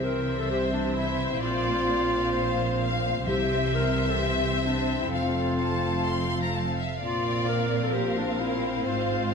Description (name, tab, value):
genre	cinematic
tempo	129 BPM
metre	4/4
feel	straight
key	unclear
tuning	A4 = 440 Hz
part	clear symphonic violin section	melody	0.0-9.3 s	E5 to F5	-34 LUFS	left 4 dB	none
part	clear clarinet	second line	0.0-9.3 s	D4 to Bb4	-30 LUFS	equal	none
part	clear symphonic viola section	accompaniment	0.0-9.3 s	C4 to C5	-33 LUFS	equal	none
part	dark French horn section	sustained chords	0.0-9.3 s	E3 to C4	-33 LUFS	left 5 dB	none
part	bright studio double bass section	bass	0.0-9.3 s	F1 to C2	-32 LUFS	right 3 dB	none
part	warm symphonic cello section	bass	0.0-9.3 s	F2 to C3	-32 LUFS	right 3 dB	none
part	timpani	percussion	0.0-0.2, 3.3-3.9 s	C3	-38 LUFS	left 2 dB	none
part	rich symphonic violin section	second line	0.5-9.3 s	C5 to C6	-32 LUFS	left 3 dB	none
room	wet scoring stage reverb, RT60 1.7 s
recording	none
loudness	-24 LUFS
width	side -6 dB against mid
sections	0.0-9.3 A section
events	none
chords	0.0 C; 1.4 Bbsus2; 3.3 C; 5.1 F; 7.0 Bbsus2